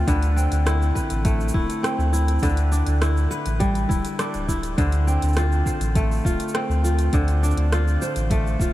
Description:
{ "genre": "folktronica", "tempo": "102 BPM", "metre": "4/4", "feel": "straight", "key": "D dorian", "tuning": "A4 = 439 Hz", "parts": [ { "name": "kora", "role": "arpeggios", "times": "0.0-8.7 s", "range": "D3 to C5", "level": "-24 LUFS", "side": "equal", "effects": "diffuse ambient delay" }, { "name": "warm sub bass", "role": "bass", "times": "0.0-8.7 s", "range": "D1 to D2", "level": "-21 LUFS", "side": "equal", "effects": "none" }, { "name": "electronic kick drum", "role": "drums", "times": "0.1-8.7 s", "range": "none", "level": "-24 LUFS", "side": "equal", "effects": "none" }, { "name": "organic electronic drum kit", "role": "drums", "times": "0.1-8.7 s", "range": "hi-hat, rim click, shaker", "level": "-32 LUFS", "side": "right 1 dB", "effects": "none" } ], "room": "light reverb, digital ambience", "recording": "vinyl crackle", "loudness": "-19 LUFS", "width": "side -15 dB against mid", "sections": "0.0-8.7 A section", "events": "none", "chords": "0.1 Amadd9; 2.4 Em; 4.8 Dm7" }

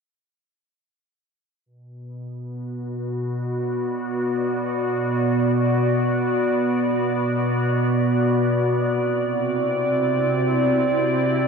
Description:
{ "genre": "ambient", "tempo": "free time", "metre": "none", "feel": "none", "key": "unclear", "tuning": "A4 = 437 Hz", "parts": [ { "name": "evolving wavetable pad", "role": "solo", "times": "2.1-11.5 s", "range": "B2 to D5", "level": "-20 LUFS", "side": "equal", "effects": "chorus, built-in reverb" } ], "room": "wet cathedral reverb, RT60 5.4 s", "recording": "worn, warbling old tape, cassette tape, warbly pitch drift", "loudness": "-19 LUFS", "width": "side -5 dB against mid", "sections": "1.7-11.5 A section", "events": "none", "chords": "1.7 Bm; 8.7 Cadd9" }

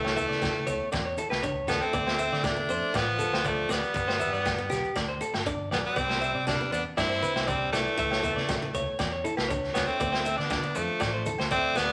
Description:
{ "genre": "highlife guitar band", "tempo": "119 BPM", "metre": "4/4", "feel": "straight", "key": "unclear", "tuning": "A4 = 437 Hz", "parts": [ { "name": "raspy tenor saxophone", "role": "melody", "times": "0.0-11.9 s", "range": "A3 to E4", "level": "-31 LUFS", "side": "equal", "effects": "none" }, { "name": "bright tenor saxophone", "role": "second line", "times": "0.0-11.9 s", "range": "E3 to C4", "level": "-40 LUFS", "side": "equal", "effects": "none" }, { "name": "picked swing-style acoustic guitar", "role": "accompaniment", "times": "0.0-11.9 s", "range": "A3 to A4", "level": "-41 LUFS", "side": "equal", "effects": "none" }, { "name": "clean electric guitar", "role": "arpeggios", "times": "0.0-11.9 s", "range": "G4 to E5", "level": "-35 LUFS", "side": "equal", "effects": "none" }, { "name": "fingered electric bass", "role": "bass", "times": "0.0-11.9 s", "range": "G1 to D3", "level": "-39 LUFS", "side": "equal", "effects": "none" }, { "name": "agogo bells", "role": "percussion", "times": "0.0-11.9 s", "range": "none", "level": "-42 LUFS", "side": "equal", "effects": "none" }, { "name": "crunchy breakbeat drum kit", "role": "drums", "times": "0.1-11.9 s", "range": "kick drum, snare drum", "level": "-36 LUFS", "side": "equal", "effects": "none" }, { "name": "congas", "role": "percussion", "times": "0.2-11.6 s", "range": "none", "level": "-44 LUFS", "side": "equal", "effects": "none" }, { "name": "maracas", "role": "percussion", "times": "0.2-11.9 s", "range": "none", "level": "-50 LUFS", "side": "equal", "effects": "none" } ], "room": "moderate large studio reverb, RT60 0.9 s", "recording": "none", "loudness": "-28 LUFS", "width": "mono", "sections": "0.0-11.9 A section", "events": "none", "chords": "0.0 A/C#; 1.9 Dm; 4.0 G; 6.0 Cadd9; 8.0 A/C#; 10.0 Dm" }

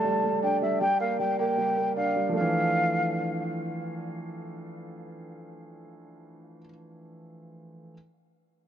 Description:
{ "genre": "hip hop", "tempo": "156 BPM", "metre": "4/4", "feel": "half-time", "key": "D minor", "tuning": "A4 = 440 Hz", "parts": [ { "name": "breathy mellow concert flute", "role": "melody", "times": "0.0-3.5 s", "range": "E5 to A5", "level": "-28 LUFS", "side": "left 1 dB", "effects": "low-pass filter, ping-pong delay" }, { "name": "dark baby grand piano", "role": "accompaniment", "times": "0.0-7.9 s", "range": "E3 to D4", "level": "-30 LUFS", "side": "right 2 dB", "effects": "low-pass filter" } ], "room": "light reverb", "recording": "none", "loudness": "-24 LUFS", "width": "side -9 dB against mid", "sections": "0.0-2.4 A section; 2.4-5.4 B section", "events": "none", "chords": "0.0 A7sus4; 0.8 Gm7; 2.4 Dmadd9" }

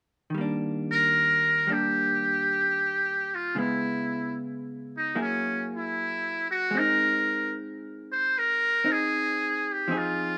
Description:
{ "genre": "jazz ballad", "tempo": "76 BPM", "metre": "4/4", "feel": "swing 67% on 8ths", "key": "Eb major", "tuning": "A4 = 440 Hz", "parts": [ { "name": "vintage hollow-body jazz guitar", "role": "accompaniment", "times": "0.3-10.4 s", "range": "Db3 to Ab4", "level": "-34 LUFS", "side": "equal", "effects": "none" }, { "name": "trumpet with metal mute", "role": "melody", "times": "0.9-10.4 s", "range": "Db4 to C5", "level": "-26 LUFS", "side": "equal", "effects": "none" } ], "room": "light reverb", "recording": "rough home demo mix", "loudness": "-26 LUFS", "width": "mono", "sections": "0.3-10.4 A section", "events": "none", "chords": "0.3 Ebmaj7; 3.5 Dbm7; 5.1 Gb9; 6.7 Ab" }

